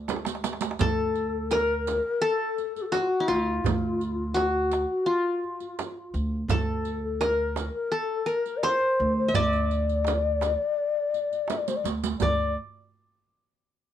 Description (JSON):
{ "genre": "Arabic maqam ensemble", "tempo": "84 BPM", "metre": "4/4", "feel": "straight", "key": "D maqam saba", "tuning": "A4 = 441 Hz", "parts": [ { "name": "qanun", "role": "melody", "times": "0.0-12.5 s", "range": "D4 to E5-50c", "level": "-27 LUFS", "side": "left 1 dB", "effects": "none" }, { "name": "rich double bass", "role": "drone", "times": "0.0-0.9 s", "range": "D2", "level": "-44 LUFS", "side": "equal", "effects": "none" }, { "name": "darbuka", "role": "percussion", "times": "0.1-12.5 s", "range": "none", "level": "-32 LUFS", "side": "right 5 dB", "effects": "none" }, { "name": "frame drum", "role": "percussion", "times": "0.1-12.5 s", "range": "none", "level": "-33 LUFS", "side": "right 7 dB", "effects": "none" }, { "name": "riq", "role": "percussion", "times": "0.1-12.5 s", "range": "none", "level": "-35 LUFS", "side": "right 8 dB", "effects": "none" }, { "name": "breathy mellow low ney", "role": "second line", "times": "0.8-12.5 s", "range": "F4 to E5-41c", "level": "-29 LUFS", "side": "left 4 dB", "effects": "none" }, { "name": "upright bass", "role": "bass", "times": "0.8-12.5 s", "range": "D2", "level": "-28 LUFS", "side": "right 1 dB", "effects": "none" } ], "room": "light reverb", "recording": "none", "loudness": "-24 LUFS", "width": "side -10 dB against mid", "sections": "0.8-12.2 A section; 12.2-13.9 B section", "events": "drum fill 0.1-0.8, 11.5-12.2", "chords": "none", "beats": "0.08 | 0.80 1.51 2.22 2.94 | 3.65 4.36 5.07 5.79 | 6.50 7.21 7.93 8.64 | 9.35 10.07 10.78 11.49 | 12.21" }